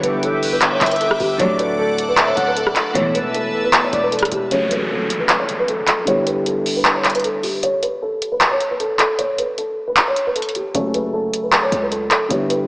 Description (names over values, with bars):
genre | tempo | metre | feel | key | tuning
hip hop, trap | 154 BPM | 4/4 | half-time | F# phrygian | A4 = 439 Hz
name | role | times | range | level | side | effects
felt-muted upright piano | melody | 0.0-12.7 s | G4 to C#5 | -20 LUFS | equal | wide subtle chorus, low-pass filter, tape echo
dark grand piano | accompaniment | 0.0-7.7, 10.7-12.7 s | B2 to A4 | -24 LUFS | equal | lush chorus, low-pass filter
sweeping resonant pad | sustained chords | 0.0-4.5 s | A4 to E6 | -25 LUFS | equal | chorus
rich symphonic string section | stabs | 0.0-3.3 s | B1 to F#3 | -27 LUFS | equal | none
hard-hitting 808-style bass | bass | 0.0-4.5, 10.7-12.7 s | D1 to C#2 | -30 LUFS | equal | none
booming analog drum machine | drums | 0.0-12.6 s | handclaps, hi-hat, rim click | -18 LUFS | equal | none
breathy flute-like synth lead | second line | 0.8-4.1 s | D5 to F#5 | -24 LUFS | equal | chorus, tape echo
downlifter | sound effects | 4.5-7.6 s | none | -28 LUFS | equal | none
room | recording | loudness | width
wet lush hall reverb, RT60 1.8 s, small room ambience | dreamy mix soaked in reverb, small speaker sound | -15 LUFS | side -25 dB against mid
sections
0.0-4.5 A section; 4.5-12.7 B section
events
kick muted 4.5-10.7; filter sweep 4.5-12.7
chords
0.0 G6; 1.4 D; 3.0 Esus4; 4.5 F#m; 6.1 G6; 7.6 N.C.; 10.7 F#m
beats
0.23 0.62 1.00 | 1.40 1.78 2.17 2.56 | 2.95 3.34 3.73 4.12 | 4.51 4.90 5.29 5.68 | 6.07 6.46 6.85 7.24 | 7.63 8.02 8.41 8.80 | 9.19 9.58 9.97 10.36 | 10.75 11.13 11.53 11.91 | 12.30